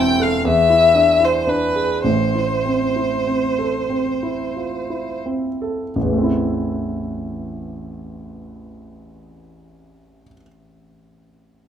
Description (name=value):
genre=classical, romantic duo for violin and grand piano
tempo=28-42 BPM (dotted quarters)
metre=6/8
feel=rubato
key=A minor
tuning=A4 = 440 Hz
part: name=rich violin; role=melody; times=0.0-5.2 s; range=B4 to G5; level=-18 LUFS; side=left 2 dB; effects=none
part: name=dark grand piano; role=accompaniment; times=0.0-11.7 s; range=E1 to A4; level=-21 LUFS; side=right 1 dB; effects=none
room=light reverb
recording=none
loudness=-17 LUFS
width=side -9 dB against mid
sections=0.0-6.0 A section; 6.0-10.1 B section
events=slowing down 0.0-6.0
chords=0.5 E7; 2.1 Am